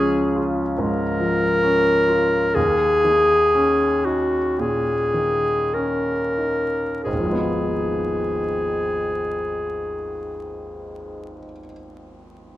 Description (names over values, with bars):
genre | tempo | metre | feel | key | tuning
classical, impressionist duo for clarinet and grand piano | 42-73 BPM | 4/4 | rubato | G# dorian | A4 = 440 Hz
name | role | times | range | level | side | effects
warm clarinet | melody | 0.0-11.4 s | F#4 to A#4 | -20 LUFS | left 1 dB | none
warm concert grand piano | accompaniment | 0.0-12.6 s | G#1 to E#4 | -24 LUFS | equal | none
room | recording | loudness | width
wet recital hall reverb, RT60 1.6 s | minimal, uncompressed stereo recording, vinyl crackle | -18 LUFS | side -14 dB against mid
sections
0.0-7.1 A section; 7.1-12.0 B section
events
slowing down 0.0-7.1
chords
0.0 C#; 2.6 D#7sus4; 7.1 G#m6